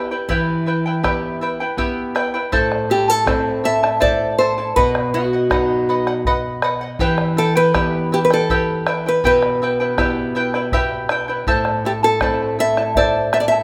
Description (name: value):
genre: andean folk, Andean ensemble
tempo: 81 BPM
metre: 3/4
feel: straight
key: E harmonic minor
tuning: A4 = 440 Hz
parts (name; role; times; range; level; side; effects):
- nylon-string guitar; melody; 0.0-13.6 s; E4 to E5; -21 LUFS; equal; none
- charango; accompaniment; 0.0-13.6 s; E4 to A5; -23 LUFS; equal; none
- nylon-string guitar; accompaniment; 0.0-13.6 s; A2 to G4; -26 LUFS; equal; none
- bombo; percussion; 0.1-13.6 s; none; -26 LUFS; equal; none
room: moderate recital hall reverb, RT60 1.4 s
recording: none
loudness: -18 LUFS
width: mono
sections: 0.0-2.5 A section; 2.5-13.6 B section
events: none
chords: 0.0 Em; 2.5 Am; 4.8 B; 7.0 Em; 11.5 Am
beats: | 0.29 1.03 1.78 | 2.53 3.27 4.02 | 4.77 5.51 6.26 | 7.00 7.75 8.49 | 9.23 9.98 10.72 | 11.47 12.21 12.96